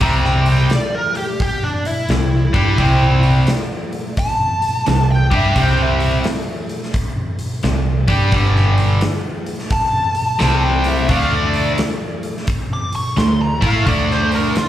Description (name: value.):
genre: blues rock power trio and southern rock.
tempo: 87 BPM.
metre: 4/4.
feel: swing 65% on 8ths.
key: unclear.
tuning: A4 = 440 Hz.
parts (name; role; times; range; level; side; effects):
fuzz lead guitar; melody; 0.0-14.7 s; D4 to D6; -21 LUFS; equal; wah, distortion, slapback echo.
cranked stack guitar; riff; 0.0-14.6 s; G2 to A4; -17 LUFS; equal; overdrive, slapback echo.
vintage muted fingered electric bass; bass; 0.0-14.5 s; G1 to A2; -17 LUFS; equal; none.
huge arena drum kit; drums; 0.0-14.7 s; hi-hat, kick drum, snare drum; -21 LUFS; equal; none.
room: little or no reverb.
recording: live gig heard through the venue's PA, club reverb.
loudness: -14 LUFS.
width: side -12 dB against mid.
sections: 0.0-14.7 A section.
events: none.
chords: 0.0 C; 8.3 G5; 10.4 C5; 11.1 D5.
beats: | 0.01 0.71 1.40 2.09 | 2.79 3.48 4.17 4.86 | 5.56 6.25 6.94 7.63 | 8.33 9.02 9.71 10.40 | 11.09 11.78 12.48 13.17 | 13.86 14.55.